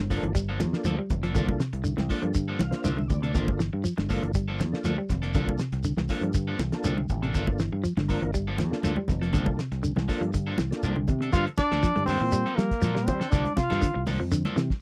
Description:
afrobeat; 120 BPM; 4/4; straight; G dorian; A4 = 440 Hz
semi-hollow electric guitar; arpeggios; 0.0-14.7 s; C3 to G3; -34 LUFS; equal
electric guitar at the edge of break-up; stabs; 0.0-14.6 s; F3 to A4; -38 LUFS; equal
fingered electric bass; bass; 0.0-14.7 s; F1 to G3; -32 LUFS; equal
tonewheel organ; accompaniment; 0.1-10.9 s; Bb3 to F5; -35 LUFS; equal; chorus vibrato, slow rotary speaker
cloth-damped thuddy drum kit; drums; 0.1-14.8 s; hi-hat, kick drum, snare drum; -32 LUFS; equal
congas; percussion; 0.1-14.6 s; -36 LUFS; equal
shekere; percussion; 0.1-14.7 s; -35 LUFS; equal
clear trombone; melody; 11.3-14.0 s; Bb3 to F4; -31 LUFS; equal
clear trumpet; second line; 11.3-14.0 s; Bb4 to F5; -35 LUFS; equal
little or no reverb; dry, close 1970s-style studio recording; -27 LUFS; mono
0.0-11.3 A section; 11.3-14.8 B section
tonewheel organ fill 2.4-3.3
0.0 Gm9; 1.4 C13sus4; 3.3 Gm9; 5.3 C13sus4; 7.3 Gm9; 9.3 C13sus4; 11.3 Gm9; 13.3 C13sus4

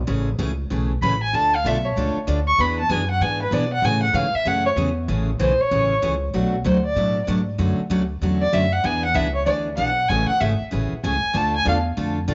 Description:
country, western swing; 192 BPM; 4/4; swing 64% on 8ths; A major; A4 = 440 Hz
upright bass; bass; 0.0-12.3 s; G#1 to B2; -27 LUFS; equal; tube saturation
picked steel-string acoustic guitar; accompaniment; 0.1-12.3 s; B2 to A4; -26 LUFS; equal
dark fiddle; melody; 1.0-11.8 s; B4 to C#6; -24 LUFS; equal
light reverb, small room ambience; nothing above 7.7 kHz; -21 LUFS; mono
0.0-5.1 A section; 5.1-12.3 A section
fiddle solo 0.0-5.1, 5.1-12.3
0.1 Amaj7; 1.3 Dm; 2.6 E7; 3.8 Amaj7; 6.3 Bm7; 7.6 Dmaj7; 8.8 E7; 10.1 Amaj7; 11.3 Dm

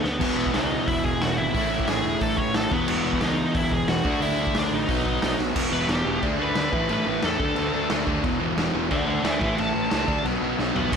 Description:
punk rock; 179 BPM; 4/4; straight; E major; A4 = 440 Hz
high-gain lead guitar; melody; 0.0-11.0 s; B3 to C#6; -28 LUFS; left 1 dB; distortion, ping-pong delay
crunchy overdriven guitar; riff; 0.0-11.0 s; E2 to D4; -25 LUFS; equal
fuzz picked electric bass; bass; 0.0-11.0 s; E1 to A2; -32 LUFS; equal; overdrive
raw garage drum kit; drums; 0.0-11.0 s; crash cymbal, hi-hat, kick drum, snare drum, toms; -27 LUFS; equal
little or no reverb; -21 LUFS; side -6 dB against mid
0.0-5.6 A section; 5.6-10.9 B section
drum fill 0.0, 5.4, 10.6-10.9; lead electric guitar solo 5.6-10.9
0.2 E; 1.5 A; 2.7 E; 4.1 D; 4.9 B; 5.6 E5; 6.2 D5; 6.7 A5; 7.4 D5; 8.2 E5; 8.9 D5; 9.4 A; 10.1 D5; 10.3 B5

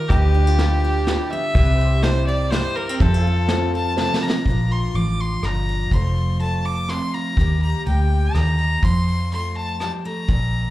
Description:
honky-tonk and classic country; 124 BPM; 3/4; straight; A4 = 441 Hz
clear fiddle; melody; 0.0-10.7 s; G4 to D6; -25 LUFS; left 1 dB; slapback echo
picked steel-string acoustic guitar; accompaniment; 0.0-10.7 s; G2 to C5; -28 LUFS; left 1 dB; slapback echo
pedal steel guitar; sustained chords; 0.0-4.5 s; D4 to C5; -30 LUFS; right 2 dB
vintage muted fingered electric bass; bass; 0.1-10.6 s; F1 to F2; -19 LUFS; equal
vintage brush drum kit; drums; 0.1-10.4 s; hi-hat, kick drum, rim click, snare drum; -22 LUFS; equal
dark baby grand piano; accompaniment; 0.6-4.3 s; E4 to C5; -31 LUFS; right 5 dB; slapback echo
small room ambience; live gig heard through the venue's PA, club reverb; -18 LUFS; side -15 dB against mid
0.0-4.5 A section; 4.5-10.7 B section
drum fill 4.0-4.5
0.1 G7/D; 1.6 C; 3.0 F; 4.5 Bb; 5.9 F; 7.4 Eb; 8.8 F

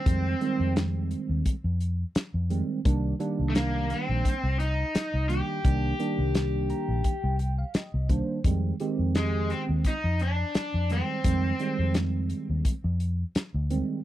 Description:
straight-eighth soul blues; 86 BPM; 4/4; swing 54% on 16ths; A4 = 440 Hz
cranked stack guitar; melody; 0.0-11.9 s; Ab3 to G4; -31 LUFS; left 1 dB; overdrive
tine electric piano; accompaniment; 0.1-14.0 s; Eb3 to Bb5; -30 LUFS; right 4 dB; analog chorus
vintage muted fingered electric bass; bass; 0.1-13.8 s; Bb1 to F2; -27 LUFS; equal
warm soul drum kit; drums; 0.1-13.9 s; hi-hat, kick drum, snare drum; -26 LUFS; left 1 dB
little or no reverb; dry, close 1970s-style studio recording; -25 LUFS; side -14 dB against mid
0.0-14.0 A section
tine electric piano fill 6.3-8.4
0.1 Fm7; 2.9 Cm7; 8.4 Fm7

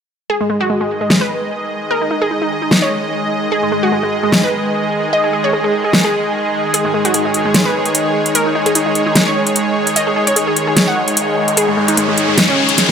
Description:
heavy wobble dubstep; 149 BPM; 4/4; swing 55% on 16ths, half-time; A4 = 440 Hz
wide unison pluck; melody; 0.3-12.9 s; G#3 to F#5; -18 LUFS; equal; tape echo
supersaw pad; sustained chords; 0.6-12.9 s; D#3 to D#5; -19 LUFS; right 1 dB
granular cloud pad; texture; 1.5-12.9 s; G#3 to G#5; -21 LUFS; equal; built-in reverb
dubstep drum kit; drums; 1.1-12.9 s; hi-hat, snare drum; -14 LUFS; equal
riser; sound effects; 10.6-12.9 s; -18 LUFS; left 2 dB
moderate lush hall reverb, RT60 1.9 s, digital ambience; -13 LUFS; side -7 dB against mid
0.3-12.9 A section
riser 10.6-12.9
0.3 G#5

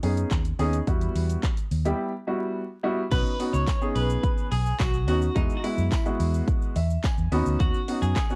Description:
dance-pop; 107 BPM; 4/4; straight; B major; A4 = 440 Hz
warm baby grand piano; accompaniment; 0.0-8.4 s; G3 to B5; -31 LUFS; equal; sidechain pumping, cassette tape
vintage muted fingered electric bass; bass; 0.0-8.1 s; B1 to F#2; -28 LUFS; equal; tube saturation, sidechain pumping
pop drum kit; drums; 0.0-8.4 s; crash cymbal, handclaps, hi-hat, kick drum, shaker; -29 LUFS; equal; cassette tape
clean electric guitar; melody; 3.1-8.4 s; D#4 to C#5; -34 LUFS; equal; tremolo, cassette tape, tape echo
tambourine; percussion; 3.7-8.3 s; -51 LUFS; equal
light reverb; home recording on cassette, vinyl crackle; -25 LUFS; mono
0.0-3.1 A section; 3.1-8.4 B section
break 2.0-3.1; grand piano fill 6.5-7.6
0.0 Badd9; 0.9 Emadd9; 3.1 Badd9; 5.4 Eadd9; 7.3 Badd9

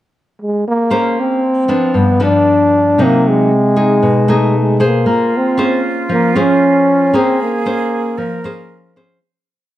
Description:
bossa nova; 116 BPM; 4/4; straight; Bb minor; A4 = 439 Hz
breathy trombone; melody; 0.4-8.9 s; G#3 to D4; -13 LUFS; equal
nylon-string guitar; accompaniment; 0.9-9.2 s; G2 to C5; -15 LUFS; left 1 dB
breathy concert flute; second line; 5.1-9.0 s; F4 to Bb4; -22 LUFS; right 5 dB
light reverb; -11 LUFS; side -13 dB against mid
0.0-0.9 pickup bar; 0.9-9.2 A section
fade-out 7.1-9.2
0.0 N.C.; 0.9 Bbm9; 1.9 G7; 3.0 Cm7b5; 4.0 B6; 5.1 Bbm9

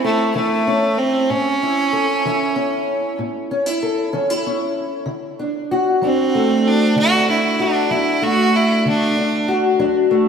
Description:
acoustic country blues, solo or duo; 63 BPM (dotted quarters); 12/8; straight; A major; A4 = 443 Hz
bright fiddle; melody; 0.0-9.5 s; A3 to F#4; -18 LUFS; right 2 dB; tape echo
fingerpicked steel-string acoustic guitar; accompaniment; 0.0-10.3 s; A2 to A4; -18 LUFS; left 1 dB; lush chorus
wet lush hall reverb, RT60 2.9 s; dreamy mix soaked in reverb; -16 LUFS; side -6 dB against mid
0.0-10.3 A section
0.0 A; 5.1 D

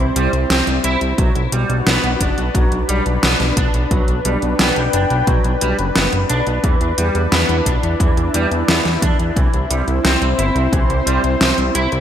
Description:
synthwave; 88 BPM; 4/4; straight; G major; A4 = 442 Hz
lush unison pad; sustained chords; 0.0-12.0 s; G3 to G5; -21 LUFS; left 1 dB; chorus, sidechain pumping
clean electric guitar; arpeggios; 0.0-11.9 s; E3 to E4; -22 LUFS; right 2 dB; ensemble chorus, low-pass filter, ping-pong delay
fat analog bass; bass; 0.0-12.0 s; F#1 to E2; -19 LUFS; equal
pop drum kit; drums; 0.2-12.0 s; hi-hat, snare drum; -20 LUFS; equal; overdrive, gated reverb
electronic kick drum; drums; 1.2-10.9 s; -18 LUFS; equal
moderate plate reverb, RT60 2.0 s; bright 1980s-style digital production; -14 LUFS; side -9 dB against mid
0.0-12.0 A section
0.0 C; 1.2 Gmaj7; 6.6 Em7; 9.4 C

